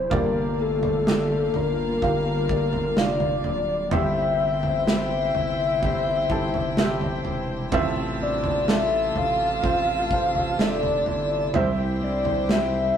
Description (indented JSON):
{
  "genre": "pop ballad",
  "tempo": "63 BPM",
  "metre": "4/4",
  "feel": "straight",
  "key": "F major",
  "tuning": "A4 = 440 Hz",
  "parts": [
    { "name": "soft octave-layered synth lead", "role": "melody", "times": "0.0-13.0 s", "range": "A4 to F5", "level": "-24 LUFS", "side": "left 2 dB", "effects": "chorus" },
    { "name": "warm baby grand piano", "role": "accompaniment", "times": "0.0-13.0 s", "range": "G2 to F5", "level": "-30 LUFS", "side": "right 3 dB", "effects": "none" },
    { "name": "ethereal airy pad", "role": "sustained chords", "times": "0.0-13.0 s", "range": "C3 to G4", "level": "-33 LUFS", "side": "equal", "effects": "ensemble chorus, built-in reverb" },
    { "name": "fingerpicked steel-string acoustic guitar", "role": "arpeggios", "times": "0.0-13.0 s", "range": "G2 to A4", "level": "-36 LUFS", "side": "equal", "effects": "none" },
    { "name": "saturated sub bass", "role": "bass", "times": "0.0-12.9 s", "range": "D1 to C2", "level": "-31 LUFS", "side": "equal", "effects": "none" },
    { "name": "warm studio violin section", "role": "second line", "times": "0.1-13.0 s", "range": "Bb3 to E6", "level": "-34 LUFS", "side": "left 2 dB", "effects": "none" },
    { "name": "natural country drum kit", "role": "drums", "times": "0.1-12.7 s", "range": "kick drum, snare drum, toms", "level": "-27 LUFS", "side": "right 2 dB", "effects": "none" }
  ],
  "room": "wet stone room reverb, RT60 1.2 s",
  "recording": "rough rehearsal-room recording",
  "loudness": "-21 LUFS",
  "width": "side -8 dB against mid",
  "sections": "0.0-13.0 A section",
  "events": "none",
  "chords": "0.1 Gm7; 3.9 C/G; 7.7 Fmaj7/A; 11.5 C",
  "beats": "| 0.11 1.06 2.01 2.96 | 3.92 4.87 5.82 6.77 | 7.73 8.68 9.63 10.58 | 11.54 12.49"
}